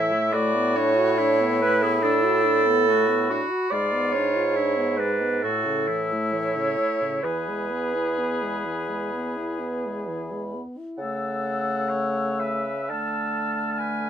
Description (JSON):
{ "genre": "classical, slow romantic movement for wind quintet", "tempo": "56-73 BPM", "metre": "4/4", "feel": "rubato", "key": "A major", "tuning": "A4 = 440 Hz", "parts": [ { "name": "mellow hollow concert flute", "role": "melody", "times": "0.0-14.1 s", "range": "B5 to F6", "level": "-32 LUFS", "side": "left 5 dB", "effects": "none" }, { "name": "clear oboe", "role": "second line", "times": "0.0-14.1 s", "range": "D4 to C#5", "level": "-31 LUFS", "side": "left 5 dB", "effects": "none" }, { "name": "clear clarinet", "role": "accompaniment", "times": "0.0-14.1 s", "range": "F#4 to A5", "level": "-25 LUFS", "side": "right 4 dB", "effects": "none" }, { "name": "warm French horn", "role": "accompaniment", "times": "0.0-14.1 s", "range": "A2 to F#4", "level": "-32 LUFS", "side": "left 2 dB", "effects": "none" }, { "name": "mellow bassoon", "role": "bass", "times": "0.0-14.1 s", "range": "E2 to D3", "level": "-27 LUFS", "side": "right 1 dB", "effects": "none" } ], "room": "moderate studio reverb, RT60 0.5 s", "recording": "none", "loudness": "-21 LUFS", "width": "side -9 dB against mid", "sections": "0.0-14.1 A section", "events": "none", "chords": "0.3 Bm7/A; 3.7 G#dim7; 5.4 A; 7.2 E; 11.0 A/C#; 12.9 Dm", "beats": "| 0.33 1.19 2.03 2.87 | 3.71 4.56 5.43 6.33 | 7.23 8.16 9.11 10.05 | 10.98 11.89 12.90 13.79" }